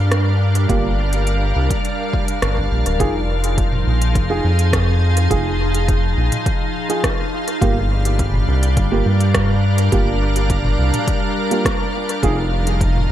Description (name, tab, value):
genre	ambient dub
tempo	104 BPM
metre	4/4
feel	straight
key	F dorian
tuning	A4 = 440 Hz
part	soft additive organ-like pad	sustained chords	0.0-13.1 s	F3 to F5	-22 LUFS	equal	ensemble chorus, built-in reverb
part	round analog bass	bass	0.0-13.1 s	D1 to G2	-17 LUFS	equal	none
part	wind-like tuned noise texture	texture	0.0-3.0, 12.2-13.1 s	D4 to F5	-36 LUFS	left 3 dB	none
part	organic electronic drum kit	drums	0.1-13.1 s	hi-hat, rim click, toms	-25 LUFS	right 1 dB	overdrive, dub echo
part	dark upright piano	stabs	0.7-12.3 s	Bb3 to Ab4	-25 LUFS	right 3 dB	dub echo
part	electronic kick drum	drums	0.7-12.9 s	none	-22 LUFS	equal	none
room	light reverb, digital ambience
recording	none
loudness	-15 LUFS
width	side -12 dB against mid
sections	0.0-3.0 A section; 3.0-13.1 B section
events	none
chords	0.0 Gm7; 3.0 Fm7; 7.6 Gm7; 12.2 Fm7